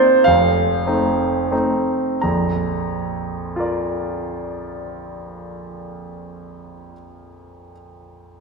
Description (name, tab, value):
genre	classical, piano waltz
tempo	79-103 BPM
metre	3/4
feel	rubato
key	Bb major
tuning	A4 = 441 Hz
part	bright concert grand piano	solo	0.0-8.4 s	F1 to Bb5	-18 LUFS	right 1 dB	none
room	wet concert hall reverb, RT60 2.0 s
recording	none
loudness	-17 LUFS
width	side -3 dB against mid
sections	0.0-2.2 A section; 2.2-6.2 B section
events	slowing down 0.0-2.2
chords	0.3 F7; 2.2 Bb